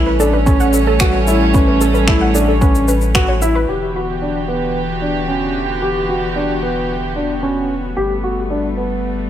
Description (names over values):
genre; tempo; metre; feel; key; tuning
piano and strings electronica; 112 BPM; 4/4; straight; unclear; A4 = 439 Hz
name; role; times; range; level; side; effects
warm chamber string section; sustained chords; 0.0-9.3 s; D3 to G4; -20 LUFS; right 1 dB; sidechain pumping
warbly dusty pluck; arpeggios; 0.0-3.6 s; A4 to F#5; -21 LUFS; right 1 dB; chorus, vintage 12-bit sampler grit, sidechain pumping, ping-pong delay
dark upright piano; riff; 0.0-9.1 s; B3 to G4; -19 LUFS; equal; ping-pong delay
round analog bass; bass; 0.0-9.3 s; E1 to A1; -20 LUFS; equal; sidechain pumping
electronic shaker and finger snaps; drums; 0.2-3.5 s; none; -21 LUFS; left 1 dB; overdrive
electronic kick drum; drums; 0.5-3.3 s; none; -15 LUFS; equal; overdrive
room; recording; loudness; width
light reverb, digital ambience; none; -14 LUFS; side -10 dB against mid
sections
0.0-3.7 A section; 3.7-9.3 B section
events
drop 0.0-3.7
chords
0.0 A7; 3.7 Em7; 8.0 Gadd9